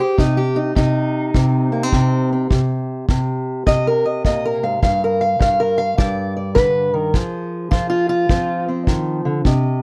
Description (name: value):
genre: acoustic country blues, solo or duo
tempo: 104 BPM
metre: 4/4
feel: swing 66% on 8ths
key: C minor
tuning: A4 = 436 Hz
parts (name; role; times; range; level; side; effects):
- fingerpicked steel-string acoustic guitar; melody; 0.0-9.8 s; G2 to F5; -19 LUFS; equal; none
- kick drum; drums; 0.2-9.6 s; none; -21 LUFS; equal; none
room: light reverb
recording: close, detailed microphones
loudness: -18 LUFS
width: mono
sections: 0.0-9.8 A section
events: steel-string acoustic guitar solo 0.0-9.8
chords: 0.2 Cm; 4.8 G; 7.1 Fm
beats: | 0.18 0.77 1.34 1.93 | 2.50 3.08 3.66 4.24 | 4.82 5.40 5.98 6.56 | 7.14 7.72 8.30 8.88 | 9.46